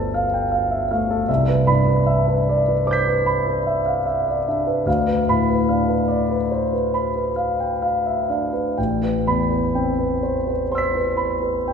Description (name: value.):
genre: classical, impressionist solo piano.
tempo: 41-53 BPM (dotted quarters).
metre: 9/8.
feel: rubato.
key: unclear.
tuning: A4 = 443 Hz.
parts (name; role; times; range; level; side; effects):
warm concert grand piano; solo; 0.0-11.7 s; G1 to B6; -18 LUFS; equal; none.
room: wet concert hall reverb, RT60 2.4 s.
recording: recorded in a church or concert hall.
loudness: -18 LUFS.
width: side -6 dB against mid.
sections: 0.0-11.7 A section.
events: none.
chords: 0.0 G9sus4; 1.3 Cmaj9; 4.9 Dm6; 8.8 Am9.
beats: 0.15 | 1.29 2.48 3.68 | 4.87 6.09 7.38 | 8.78 10.22 11.66.